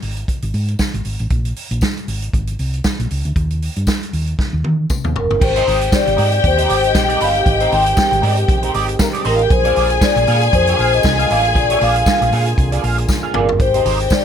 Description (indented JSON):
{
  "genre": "disco",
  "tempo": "117 BPM",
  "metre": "4/4",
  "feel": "swing 56% on 16ths",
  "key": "unclear",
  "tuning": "A4 = 440 Hz",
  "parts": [
    { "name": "hollow-body short-scale fingered electric bass", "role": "bass", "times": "0.0-14.1 s", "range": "Gb1 to Eb3", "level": "-19 LUFS", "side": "equal", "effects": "none" },
    { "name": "vintage drum kit", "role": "drums", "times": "0.0-14.2 s", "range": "crash cymbal, hi-hat, kick drum, snare drum, toms", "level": "-19 LUFS", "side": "equal", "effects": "none" },
    { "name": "tambourine", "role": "percussion", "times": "0.8-14.2 s", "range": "none", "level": "-30 LUFS", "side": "left 9 dB", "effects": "none" },
    { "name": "vibraphone with soft mallets", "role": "melody", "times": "5.2-14.2 s", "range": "Bb4 to G5", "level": "-17 LUFS", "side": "left 2 dB", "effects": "plate reverb" },
    { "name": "dark studio string section", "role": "second line", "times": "5.4-14.2 s", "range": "Bb3 to Ab5", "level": "-20 LUFS", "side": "left 2 dB", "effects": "plate reverb" },
    { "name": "clean electric guitar", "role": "accompaniment", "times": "5.4-14.2 s", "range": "Eb4 to F5", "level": "-23 LUFS", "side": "right 6 dB", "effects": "wah, ensemble chorus, plate reverb" },
    { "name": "mellow French horn section", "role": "sustained chords", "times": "5.4-14.2 s", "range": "D3 to G4", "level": "-26 LUFS", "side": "equal", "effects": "plate reverb" }
  ],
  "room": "light reverb",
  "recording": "none",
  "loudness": "-14 LUFS",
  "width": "side -8 dB against mid",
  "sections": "0.0-5.4 A section; 5.4-14.2 B section",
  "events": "drum fill 4.4-5.4, 13.1-13.6",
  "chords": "0.0 N.C.; 1.3 Bb7(no3); 3.4 N.C.; 5.4 Abmaj7; 9.5 Bb7; 13.6 Abmaj7"
}